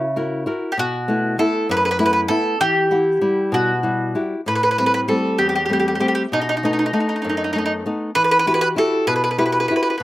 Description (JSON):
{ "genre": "italian folk", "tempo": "65 BPM (dotted quarters)", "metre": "6/8", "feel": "straight", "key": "E harmonic minor", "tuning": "A4 = 438 Hz", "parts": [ { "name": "mandolin", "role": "melody", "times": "0.0-10.0 s", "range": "D#4 to B4", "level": "-18 LUFS", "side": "right 1 dB", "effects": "slapback echo" }, { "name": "nylon-string guitar", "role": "accompaniment", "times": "0.0-10.0 s", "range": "E2 to F#5", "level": "-21 LUFS", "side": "left 1 dB", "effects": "none" } ], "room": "little or no reverb", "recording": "recorded outdoors, with no room sound", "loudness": "-17 LUFS", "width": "side -15 dB against mid", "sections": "0.0-10.0 A section", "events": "none", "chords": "0.0 F#7; 0.8 B7sus4; 2.6 Emadd9; 4.5 Am7; 6.3 B7; 8.1 Emadd9", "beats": "| 0.77 1.69 | 2.61 3.54 | 4.46 5.39 | 6.32 7.24 | 8.15 9.06 | 9.99" }